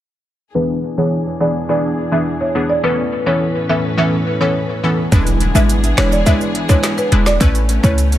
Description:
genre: dancehall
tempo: 105 BPM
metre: 4/4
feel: straight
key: unclear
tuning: A4 = 440 Hz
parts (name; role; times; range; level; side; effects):
- glassy wavetable pluck; accompaniment; 0.5-8.0 s; E3 to B4; -18 LUFS; left 1 dB; chorus, low-pass filter, analog delay
- buzzing marimba with medium mallets; melody; 0.6-8.0 s; B4 to E5; -20 LUFS; right 1 dB; low-pass filter, analog delay
- warm studio string section; sustained chords; 0.6-8.2 s; E2 to B4; -24 LUFS; left 1 dB; sidechain pumping, low-pass filter
- clean 808-style bass; bass; 5.1-8.2 s; E1 to C#2; -15 LUFS; equal; none
- island pop drum kit; drums; 5.1-8.2 s; handclaps, hi-hat, kick drum, snare drum; -16 LUFS; equal; none
- maracas; percussion; 5.1-8.2 s; none; -30 LUFS; right 7 dB; analog delay
- impact; sound effects; 5.2-7.4 s; none; -26 LUFS; equal; none
room: light reverb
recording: echo-heavy mix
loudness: -13 LUFS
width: side -12 dB against mid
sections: 0.6-5.1 A section; 5.1-8.2 B section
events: filter sweep 0.6-5.1; impact 5.1-7.4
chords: 0.6 E7; 2.8 Aadd9; 5.1 E7; 7.4 Aadd9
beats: | 0.55 1.12 1.69 2.26 | 2.84 3.41 3.98 4.55 | 5.12 5.69 6.26 6.84 | 7.41 7.98

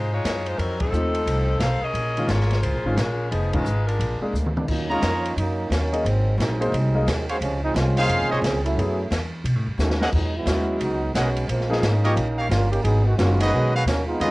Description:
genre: jazz, big band swing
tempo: 176 BPM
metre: 4/4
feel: swing 64% on 8ths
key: Bb minor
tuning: A4 = 442 Hz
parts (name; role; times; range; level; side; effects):
- clear saxophone section; melody; 0.0-4.2 s; F3 to F5; -26 LUFS; left 1 dB; cassette tape
- upright bass; bass; 0.0-14.3 s; F1 to B2; -23 LUFS; equal; none
- open jazz drum kit; drums; 0.3-14.3 s; crash cymbal, hi-hat, kick drum, ride cymbal, snare drum, toms; -29 LUFS; equal; none
- warm baby grand piano; accompaniment; 0.9-14.3 s; Eb3 to Eb5; -26 LUFS; left 1 dB; cassette tape
- warm trombone section; second line; 4.4-14.3 s; B2 to Ab4; -26 LUFS; right 2 dB; cassette tape
- clear trumpet section; stabs; 4.9-14.3 s; F4 to Bb5; -24 LUFS; right 1 dB; cassette tape
room: light reverb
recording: home recording on cassette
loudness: -20 LUFS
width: side -21 dB against mid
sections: 0.0-4.7 A section; 4.7-14.3 B section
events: band accent 0.8, 3.5; drum fill 4.3-4.7, 9.8-10.1; trombone section solo 4.7-14.3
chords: 0.0 Fm7; 0.6 F7; 2.0 Bbm7; 3.3 Fm7b5; 4.0 Bb7; 4.7 Ebm7; 6.0 Ab7; 7.4 Dbmaj7; 8.8 Gbm7; 9.4 B7; 10.1 Emaj9; 11.5 Bbm7; 12.2 Eb7; 12.8 Abm7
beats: 0.25 | 0.59 0.93 1.27 1.61 | 1.95 2.29 2.63 2.98 | 3.32 3.66 4.00 4.34 | 4.68 5.02 5.36 5.70 | 6.04 6.38 6.72 7.07 | 7.41 7.75 8.09 8.43 | 8.77 9.11 9.45 9.79 | 10.13 10.47 10.81 11.15 | 11.49 11.83 12.17 12.51 | 12.85 13.19 13.53 13.87 | 14.21

